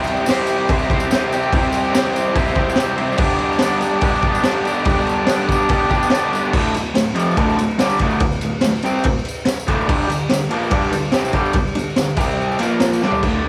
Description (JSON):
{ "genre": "garage rock duo or trio", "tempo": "144 BPM", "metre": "4/4", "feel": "straight", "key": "unclear", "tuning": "A4 = 440 Hz", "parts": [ { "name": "raw garage guitar", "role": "riff", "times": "0.0-13.5 s", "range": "D2 to C5", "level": "-20 LUFS", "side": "equal", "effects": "overdrive, spring reverb, cassette tape" }, { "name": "tambourine", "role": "percussion", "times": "0.0-13.2 s", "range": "none", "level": "-39 LUFS", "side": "equal", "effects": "none" }, { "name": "raw garage drum kit", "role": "drums", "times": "0.1-13.3 s", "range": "crash cymbal, kick drum, ride cymbal, snare drum, toms", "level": "-22 LUFS", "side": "equal", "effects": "cassette tape" } ], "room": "light reverb", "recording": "home recording on cassette", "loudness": "-18 LUFS", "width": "mono", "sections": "0.0-6.5 A section; 6.5-13.2 B section", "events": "drum fill 13.0", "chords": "0.0 C; 3.2 G; 6.5 D5; 9.9 G5; 12.2 C5; 12.6 Bb5; 13.0 G5" }